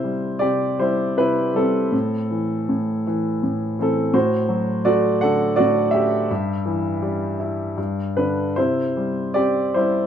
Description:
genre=classical, lyrical solo piano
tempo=74-88 BPM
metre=3/4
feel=rubato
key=C major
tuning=A4 = 440 Hz
part: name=warm grand piano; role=solo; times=0.0-10.1 s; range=G2 to F#5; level=-18 LUFS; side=equal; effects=none
room=light reverb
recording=dark, warm production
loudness=-18 LUFS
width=side -9 dB against mid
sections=0.0-10.1 A section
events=none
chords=0.0 C; 1.9 Am; 4.1 D/A; 6.3 Em/G; 7.8 G; 8.6 Cadd9

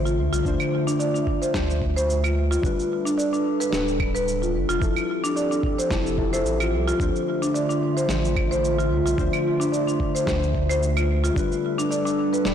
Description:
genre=organic downtempo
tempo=110 BPM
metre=4/4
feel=swing 55% on 16ths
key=D dorian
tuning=A4 = 440 Hz
part: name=deep mellow chord stab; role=accompaniment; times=0.0-12.5 s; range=F3 to E5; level=-31 LUFS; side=left 3 dB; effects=chorus, sidechain pumping, digital delay
part: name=warbly tape-like pad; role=sustained chords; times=0.0-12.5 s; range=D3 to E5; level=-27 LUFS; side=equal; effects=chorus, built-in reverb, sidechain pumping
part: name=marimba with medium mallets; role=arpeggios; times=0.0-12.4 s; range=D4 to D5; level=-25 LUFS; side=left 1 dB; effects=digital delay
part: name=warm sub bass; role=bass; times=0.0-12.5 s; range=D1 to D2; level=-25 LUFS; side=right 1 dB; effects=sidechain pumping
part: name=electronic shaker, claves and snare drum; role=drums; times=0.1-12.5 s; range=none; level=-31 LUFS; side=right 2 dB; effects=none
part: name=electronic kick drum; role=drums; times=0.5-11.5 s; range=none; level=-27 LUFS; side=right 1 dB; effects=none
room=moderate lush hall reverb, RT60 1.9 s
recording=blown-out, overdriven recording, overdrive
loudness=-20 LUFS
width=side -9 dB against mid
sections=0.0-12.5 A section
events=none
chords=0.0 Dm7; 2.6 G; 4.8 Fmaj7; 7.0 Dm7; 11.4 G

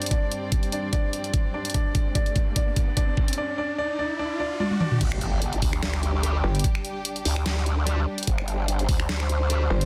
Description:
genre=heavy wobble dubstep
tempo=147 BPM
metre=4/4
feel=swing 54% on 16ths, half-time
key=unclear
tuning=A4 = 440 Hz
part: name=warm concert grand piano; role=melody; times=0.0-5.0 s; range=D4 to D5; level=-32 LUFS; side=equal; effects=dub echo
part: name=dark studio string section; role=sustained chords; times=0.0-9.9 s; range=G2 to D5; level=-37 LUFS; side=equal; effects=sidechain pumping
part: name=dubstep drum kit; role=drums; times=0.0-9.9 s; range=crash cymbal, finger snaps, hi-hat, snare drum, toms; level=-31 LUFS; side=equal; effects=overdrive
part: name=riser and impact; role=sound effects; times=1.5-6.6 s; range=none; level=-36 LUFS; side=equal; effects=none
part: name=electronic kick drum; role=drums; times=0.1-9.0 s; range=none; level=-26 LUFS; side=equal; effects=none
part: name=growl bass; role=bass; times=5.0-9.7 s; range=G1 to D2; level=-27 LUFS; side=equal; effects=chorus, overdrive
part: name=distorted electric guitar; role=stabs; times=6.2-9.6 s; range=G3 to G4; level=-40 LUFS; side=equal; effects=distortion, dub echo
part: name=metallic wobble bass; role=bass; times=6.4-6.6, 9.7-9.9 s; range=G1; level=-25 LUFS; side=equal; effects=chorus, overdrive
room=light reverb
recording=dense, heavily limited modern master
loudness=-25 LUFS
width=mono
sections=0.0-5.0 A section; 5.0-9.9 B section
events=build-up 0.0-5.0; drum fill 0.0-3.4, 4.6-5.0; riser 1.5-5.0; drop 5.0-9.9; impact 5.0-6.6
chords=0.0 G5

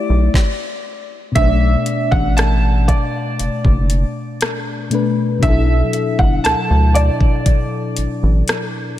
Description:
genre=contemporary R&B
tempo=59 BPM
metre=4/4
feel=straight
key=B minor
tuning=A4 = 435 Hz
part: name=warm baby grand piano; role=melody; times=0.0-8.9 s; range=D5 to A5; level=-22 LUFS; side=right 2 dB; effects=analog chorus, analog delay
part: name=mellow FM electric piano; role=accompaniment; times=0.0-9.0 s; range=B2 to D5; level=-21 LUFS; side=left 3 dB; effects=chorus
part: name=rubbery square bass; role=bass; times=0.1-8.4 s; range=F#1 to D2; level=-15 LUFS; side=equal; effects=none
part: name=smooth R&B drum kit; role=drums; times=0.3-8.7 s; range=hi-hat, kick drum, rim click, snare drum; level=-18 LUFS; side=equal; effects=none
room=light reverb, digital ambience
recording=none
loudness=-14 LUFS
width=side -13 dB against mid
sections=0.0-1.4 A section; 1.4-9.0 B section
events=stop 0.3-1.4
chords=0.0 A7sus4; 1.4 Bm7; 5.4 Gmaj13 (rootless)

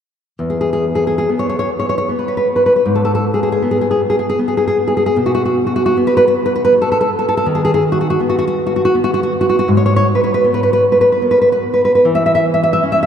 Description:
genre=romantic piece for solo classical guitar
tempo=65-81 BPM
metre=3/4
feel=rubato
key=E major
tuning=A4 = 440 Hz
part: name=nylon-string guitar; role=solo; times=0.4-13.1 s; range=E2 to E5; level=-12 LUFS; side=equal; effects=tape echo
room=wet cathedral reverb, RT60 5.3 s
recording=dreamy mix soaked in reverb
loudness=-12 LUFS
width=side -8 dB against mid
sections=0.4-13.1 A section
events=none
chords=0.4 E5; 2.9 G#m; 5.1 N.C.; 7.5 B/D#; 9.7 G#m; 12.0 C#m/E

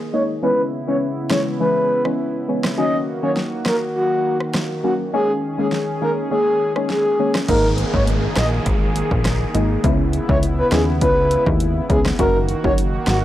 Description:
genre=dancehall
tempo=102 BPM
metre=4/4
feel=straight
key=G# minor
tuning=A4 = 442 Hz
part: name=warm analog pad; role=sustained chords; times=0.0-13.2 s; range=C#3 to G#4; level=-25 LUFS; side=equal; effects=chorus, sidechain pumping, low-pass filter
part: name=breathy flute-like synth lead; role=melody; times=0.1-13.2 s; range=F#4 to D#5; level=-21 LUFS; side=equal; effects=chorus, low-pass filter, tape echo
part: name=deep mellow chord stab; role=accompaniment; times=0.1-12.8 s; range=D#3 to F#4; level=-23 LUFS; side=left 2 dB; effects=chorus, low-pass filter
part: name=deep house drum kit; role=drums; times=1.3-13.2 s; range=crash cymbal, hi-hat, kick drum, rim click, snare drum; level=-22 LUFS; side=equal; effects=overdrive
part: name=plucky analog bass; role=bass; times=7.5-13.2 s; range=F#1 to D#2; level=-20 LUFS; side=equal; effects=none
part: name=downlifter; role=sound effects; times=7.5-12.2 s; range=none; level=-30 LUFS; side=equal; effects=none
room=light reverb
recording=dry, gritty hardware recording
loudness=-16 LUFS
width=side -13 dB against mid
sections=0.0-7.5 A section; 7.5-13.2 B section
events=filter sweep 0.0-7.5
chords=0.4 C#m7; 2.8 F#6; 5.1 D#7sus4; 7.5 G#sus2; 9.8 C#m7; 12.2 F#6

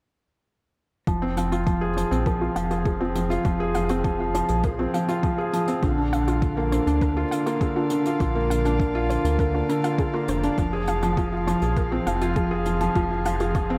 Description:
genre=piano and strings electronica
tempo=101 BPM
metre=4/4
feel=straight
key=F dorian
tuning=A4 = 439 Hz
part: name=warm string quartet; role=sustained chords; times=1.1-13.8 s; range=Bb2 to F5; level=-42 LUFS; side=equal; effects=none
part: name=analog pluck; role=arpeggios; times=1.1-13.6 s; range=F4 to F5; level=-35 LUFS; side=equal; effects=chorus, sidechain pumping, diffuse ambient delay
part: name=felt-muted upright piano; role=riff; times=1.1-13.8 s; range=D3 to Ab4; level=-26 LUFS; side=equal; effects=diffuse ambient delay
part: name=round analog bass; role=bass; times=1.1-13.8 s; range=F1 to D2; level=-30 LUFS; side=equal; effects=sidechain pumping
part: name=electronic kick drum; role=drums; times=1.1-13.7 s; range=none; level=-28 LUFS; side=equal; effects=none
part: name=hi-hat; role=drums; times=1.1-13.7 s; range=none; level=-45 LUFS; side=equal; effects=none
room=moderate lush hall reverb, RT60 1.8 s, small room ambience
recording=dreamy mix soaked in reverb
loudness=-24 LUFS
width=mono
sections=1.1-13.8 A section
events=fade-in on string quartet 1.1-13.8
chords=1.1 Fm

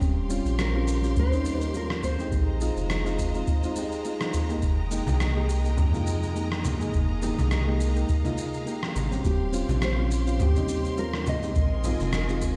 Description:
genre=sunset chillout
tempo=104 BPM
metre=4/4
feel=swing 55% on 16ths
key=F minor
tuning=A4 = 440 Hz
part: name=soft electric-piano-like synth keys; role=accompaniment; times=0.0-12.5 s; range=G3 to Ab4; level=-33 LUFS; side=equal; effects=chorus, delay
part: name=clear studio string section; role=sustained chords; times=0.0-12.6 s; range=Ab3 to C6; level=-40 LUFS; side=equal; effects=none
part: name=warm sub bass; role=bass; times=0.0-12.6 s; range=Eb1 to F2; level=-29 LUFS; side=equal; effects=none
part: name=electronic kick drum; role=drums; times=0.0-12.5 s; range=none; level=-28 LUFS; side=equal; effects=overdrive
part: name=electronic shaker and rim click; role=drums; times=0.0-12.5 s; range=none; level=-37 LUFS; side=equal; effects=none
part: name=nylon-string guitar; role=melody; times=0.6-3.7, 9.3-12.1 s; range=G4 to Eb5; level=-36 LUFS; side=equal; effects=delay
part: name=congas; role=percussion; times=5.1-12.1 s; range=none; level=-36 LUFS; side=equal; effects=none
room=light reverb, small room ambience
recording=played on a big sound system in a bare room, large studio reverb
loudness=-26 LUFS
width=mono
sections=0.0-12.6 A section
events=none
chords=0.0 Eb13; 2.3 Bb9sus4; 4.6 Fm11; 9.2 Eb13; 11.6 Bb9sus4

